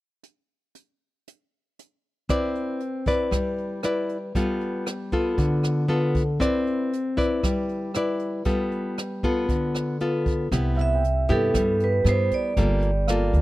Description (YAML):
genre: bossa nova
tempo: 117 BPM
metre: 4/4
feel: straight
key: C major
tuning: A4 = 440 Hz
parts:
  - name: jazz brush drum kit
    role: drums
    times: 0.2-13.4 s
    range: hi-hat, kick drum, rim click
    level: -29 LUFS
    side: equal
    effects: none
  - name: nylon-string guitar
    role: accompaniment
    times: 2.3-13.4 s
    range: C3 to D5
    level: -24 LUFS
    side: left 1 dB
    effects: none
  - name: upright bass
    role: bass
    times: 10.5-13.4 s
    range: G1 to G2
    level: -23 LUFS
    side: equal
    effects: none
  - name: vibraphone with medium hard mallets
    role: melody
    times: 10.8-13.4 s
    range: A4 to E5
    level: -24 LUFS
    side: right 3 dB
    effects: none
  - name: warm concert grand piano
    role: accompaniment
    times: 10.8-13.4 s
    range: E5 to G5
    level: -36 LUFS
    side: right 4 dB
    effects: none
room: small room ambience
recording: dry, close 1970s-style studio recording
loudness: -22 LUFS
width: side -17 dB against mid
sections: 0.2-2.3 A section; 2.3-10.5 B section; 10.5-13.4 C section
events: none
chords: 0.2 N.C.; 2.3 Cmaj9; 4.3 G9; 6.4 Cmaj9; 8.5 G9; 10.5 Cmaj7; 12.6 Gm9